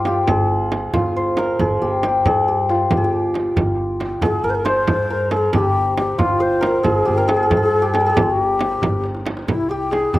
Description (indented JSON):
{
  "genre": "Persian modal ensemble",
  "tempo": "91 BPM (dotted quarters)",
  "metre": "6/8",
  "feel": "straight",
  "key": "G dastgah shur",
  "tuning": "A4 = 440 Hz",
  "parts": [
    { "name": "santur", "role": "melody", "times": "0.0-10.2 s", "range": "E4 to C5", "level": "-18 LUFS", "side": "equal", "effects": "slapback echo" },
    { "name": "upright bass", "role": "bass", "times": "0.0-10.2 s", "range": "G1 to G2", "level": "-25 LUFS", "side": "equal", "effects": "none" },
    { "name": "frame drum", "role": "percussion", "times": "0.1-10.2 s", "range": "none", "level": "-23 LUFS", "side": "right 2 dB", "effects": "none" },
    { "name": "tombak", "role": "percussion", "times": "0.1-10.2 s", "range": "none", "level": "-28 LUFS", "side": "equal", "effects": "none" },
    { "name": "breathy bright low ney", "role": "second line", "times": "4.2-10.2 s", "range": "E4 to C5", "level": "-22 LUFS", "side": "left 3 dB", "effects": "none" }
  ],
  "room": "little or no reverb",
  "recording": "recorded outdoors, with no room sound",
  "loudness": "-16 LUFS",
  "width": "side -16 dB against mid",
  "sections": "0.0-9.5 A section",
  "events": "drum fill 9.0-9.5",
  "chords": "none"
}